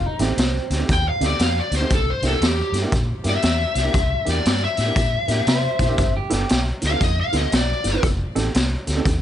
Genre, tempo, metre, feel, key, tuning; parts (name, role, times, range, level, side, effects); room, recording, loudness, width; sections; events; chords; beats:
electric blues shuffle; 118 BPM; 4/4; swing 63% on 8ths; C mixolydian; A4 = 439 Hz
electric guitar through a small old amp; second line; 0.0-0.8, 5.5-6.6 s; C4 to C5; -28 LUFS; right 5 dB; wide subtle chorus
vintage muted fingered electric bass; bass; 0.0-9.2 s; F1 to C3; -23 LUFS; equal
dark upright piano; accompaniment; 0.2-9.1 s; A3 to B4; -27 LUFS; right 4 dB
raw garage drum kit; drums; 0.2-9.2 s; hi-hat, kick drum, snare drum; -22 LUFS; equal
lead guitar through a small cranked amp; melody; 0.9-8.0 s; G4 to G5; -24 LUFS; left 3 dB; overdrive
light reverb; nothing above 10.4 kHz; -18 LUFS; side -11 dB against mid
0.0-9.2 A section
0.0 F9 (rootless); 1.9 C9; 6.0 G9; 8.0 F9
0.39 0.90 1.41 | 1.91 2.42 2.93 3.44 | 3.95 4.46 4.97 5.48 | 5.99 6.50 7.01 7.52 | 8.04 8.55 9.06